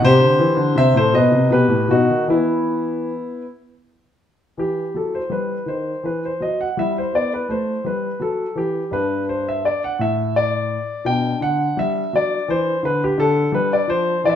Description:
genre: classical, baroque-style suite movement for grand piano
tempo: 56 BPM (dotted quarters)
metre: 6/8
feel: rubato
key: E minor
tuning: A4 = 440 Hz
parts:
  - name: warm concert grand piano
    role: solo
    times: 0.0-14.4 s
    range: G2 to G5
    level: -17 LUFS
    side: left 1 dB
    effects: none
room: wet stone room reverb, RT60 0.9 s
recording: heard from further back in the room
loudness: -17 LUFS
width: side -9 dB against mid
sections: 0.0-4.6 A section; 4.6-14.4 B section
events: none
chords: 0.0 C; 1.1 B; 2.3 E5; 4.6 Em; 5.7 D#m6; 6.8 Em/G; 8.9 G5; 10.0 N.C.; 11.0 G/B; 13.2 Dmadd11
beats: | 0.03 1.12 | 2.28 3.43 | 4.57 5.67 | 6.76 7.84 | 8.91 9.99 | 11.04 12.12 | 13.18 14.23

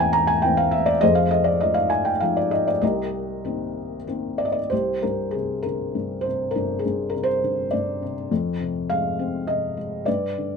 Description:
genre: classical, lyrical solo piano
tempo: 101 BPM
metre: 3/4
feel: rubato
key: C minor from 4.7 s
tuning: A4 = 440 Hz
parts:
  - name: felt-muted upright piano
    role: solo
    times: 0.0-10.6 s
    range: E1 to Bb5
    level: -21 LUFS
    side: left 1 dB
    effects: none
room: moderate studio reverb, RT60 0.5 s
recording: minimal, uncompressed stereo recording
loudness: -21 LUFS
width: side -5 dB against mid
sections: 0.0-4.7 A section; 4.7-10.6 B section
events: none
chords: 0.0 C7/E; 1.0 Fm7; 2.8 Cm7; 4.7 Csus2; 8.3 Fm; 10.1 G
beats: 0.43 | 1.03 1.62 2.22 | 2.82 3.45 4.08 | 4.72 5.34 5.94 | 6.54 7.13 7.72 | 8.31 8.89 9.47 | 10.06

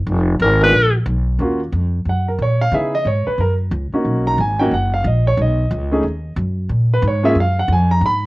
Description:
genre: jazz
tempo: 181 BPM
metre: 4/4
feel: swing 64% on 8ths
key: Eb minor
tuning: A4 = 440 Hz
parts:
  - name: upright bass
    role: bass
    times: 0.0-8.3 s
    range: F1 to Db3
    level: -17 LUFS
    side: equal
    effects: none
  - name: bright tenor saxophone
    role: melody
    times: 0.4-0.9 s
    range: Bb4 to Cb5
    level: -13 LUFS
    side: left 1 dB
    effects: cassette tape
  - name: warm grand piano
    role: accompaniment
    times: 0.6-8.2 s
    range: Ab3 to Cb6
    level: -18 LUFS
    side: right 1 dB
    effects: cassette tape
room: light reverb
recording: home recording on cassette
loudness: -15 LUFS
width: side -20 dB against mid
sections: 0.0-1.4 A section; 1.4-8.3 A section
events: tenor saxophone solo 0.0-1.4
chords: 0.1 Fdim; 0.7 N.C.; 1.4 Ebm9; 2.7 Dbm7; 3.4 Gb; 4.0 Bmaj7; 5.4 Badd9; 6.7 Bbm7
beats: | 0.07 0.41 0.74 1.07 | 1.40 1.73 2.06 2.39 | 2.72 3.06 3.39 3.72 | 4.05 4.38 4.71 5.04 | 5.37 5.70 6.03 6.36 | 6.69 7.02 7.35 7.68 | 8.01

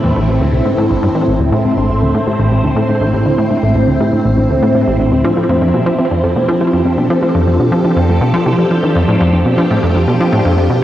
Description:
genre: ambient, sequencer-driven space music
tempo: 121 BPM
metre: 4/4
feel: straight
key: unclear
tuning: A4 = 440 Hz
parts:
  - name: phased string machine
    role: sustained chords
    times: 0.0-10.8 s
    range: A2 to C5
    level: -15 LUFS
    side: equal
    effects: ensemble chorus, phaser, cassette tape
  - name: soft round pluck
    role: arpeggios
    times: 0.0-10.8 s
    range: D3 to D5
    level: -21 LUFS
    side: left 1 dB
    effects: chorus, auto-pan, vintage 12-bit sampler grit, cassette tape, tape echo
  - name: plucky analog bass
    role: riff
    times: 0.0-10.8 s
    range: A1 to F3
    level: -13 LUFS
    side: equal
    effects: cassette tape, tape echo
room: wet lush hall reverb, RT60 2.7 s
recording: home recording on cassette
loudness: -11 LUFS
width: side -13 dB against mid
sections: 0.0-10.8 A section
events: none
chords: 0.0 Amadd9; 5.2 F6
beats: 0.28 0.78 | 1.28 1.77 2.27 2.76 | 3.26 3.75 4.25 4.75 | 5.24 5.74 6.23 6.73 | 7.23 7.72 8.22 8.71 | 9.21 9.71 10.20 10.70

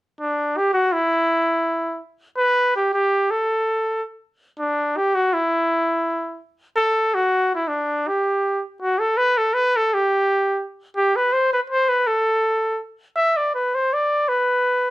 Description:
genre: mexican folk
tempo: free time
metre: none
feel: none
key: G major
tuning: A4 = 442 Hz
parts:
  - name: warm trumpet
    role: solo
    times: 0.2-14.9 s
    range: D4 to E5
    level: -18 LUFS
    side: equal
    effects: none
room: light reverb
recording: dark, warm production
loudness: -18 LUFS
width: side -16 dB against mid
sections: 0.0-8.8 A section; 8.8-14.9 B section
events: none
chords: none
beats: free time

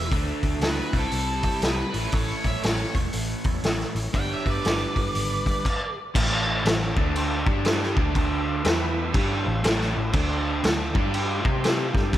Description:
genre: blues rock power trio and southern rock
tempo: 120 BPM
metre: 4/4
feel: swing 63% on 8ths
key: A mixolydian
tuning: A4 = 440 Hz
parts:
  - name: octave-fuzz lead guitar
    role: melody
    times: 0.0-6.0 s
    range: A4 to G5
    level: -31 LUFS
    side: right 2 dB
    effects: distortion, slapback echo, digital delay
  - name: dark smooth lead guitar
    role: second line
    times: 0.0-6.0 s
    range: E4 to D5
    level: -37 LUFS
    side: right 2 dB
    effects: overdrive, slapback echo
  - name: overdriven tonewheel organ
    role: sustained chords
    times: 0.0-12.2 s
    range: G3 to A5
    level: -37 LUFS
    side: right 2 dB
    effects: none
  - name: overdriven semi-hollow guitar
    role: riff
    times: 0.0-12.2 s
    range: G2 to C5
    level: -29 LUFS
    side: right 1 dB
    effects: slapback echo
  - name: vintage muted picked electric bass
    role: bass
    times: 0.0-12.2 s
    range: E1 to C3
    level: -28 LUFS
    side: equal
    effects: none
  - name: vintage drum kit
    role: drums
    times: 0.1-12.2 s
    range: crash cymbal, hi-hat, kick drum, snare drum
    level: -24 LUFS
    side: equal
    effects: none
room: light reverb, small room reverb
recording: none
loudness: -22 LUFS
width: side -13 dB against mid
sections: 0.0-6.1 A section; 6.1-12.2 B section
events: stop 5.6-6.1; tonewheel organ fill 9.1-10.1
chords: 0.1 D; 0.9 C; 1.9 A; 4.1 G; 6.1 A; 6.9 D5; 7.4 G5; 7.9 D5; 8.6 E5; 9.1 A; 10.1 D5; 10.9 G5; 11.4 C5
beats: | 0.12 0.62 1.12 1.63 | 2.13 2.63 3.14 3.64 | 4.14 4.64 5.15 5.65 | 6.15 6.65 7.15 7.65 | 8.15 8.65 9.14 9.64 | 10.14 10.64 11.14 11.64 | 12.13

